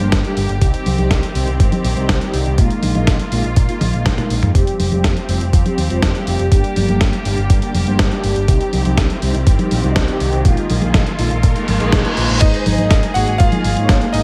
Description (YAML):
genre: italo disco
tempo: 122 BPM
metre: 4/4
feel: straight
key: F dorian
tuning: A4 = 440 Hz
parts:
  - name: rich symphonic string section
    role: sustained chords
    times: 0.0-14.2 s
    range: D3 to G#4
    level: -27 LUFS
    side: equal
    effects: low-pass filter
  - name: mellow synth brass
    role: stabs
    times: 0.0-14.2 s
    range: G3 to C#5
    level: -25 LUFS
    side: equal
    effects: chorus, delay
  - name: picked electric bass with an envelope filter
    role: bass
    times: 0.0-14.2 s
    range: F1 to Bb2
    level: -21 LUFS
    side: equal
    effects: none
  - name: dusty soul sampler-style drum kit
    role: drums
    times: 0.0-14.2 s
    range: congas, crash cymbal, hi-hat, snare drum, toms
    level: -23 LUFS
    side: equal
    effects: studio ambience, gated reverb
  - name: electronic kick drum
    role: drums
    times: 0.1-14.0 s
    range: none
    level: -18 LUFS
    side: equal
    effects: studio ambience
  - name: riser and reverse cymbal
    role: sound effects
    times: 8.3-12.4 s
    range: none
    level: -29 LUFS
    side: equal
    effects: none
  - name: bright electric grand piano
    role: melody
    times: 12.4-14.2 s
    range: D#4 to F#5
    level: -22 LUFS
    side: equal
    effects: delay
room: light reverb, digital ambience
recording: none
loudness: -16 LUFS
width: mono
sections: 0.0-4.5 A section; 4.5-12.4 B section; 12.4-14.2 C section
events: drum fill 3.8-4.5; riser 8.3-12.4; reverse cymbal 11.4-12.4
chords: 0.0 Gm; 0.6 Cm; 2.6 Bb7sus4; 4.5 Fsus2; 6.5 Gm; 8.5 Cm; 10.5 Bb7sus4; 12.4 G#sus2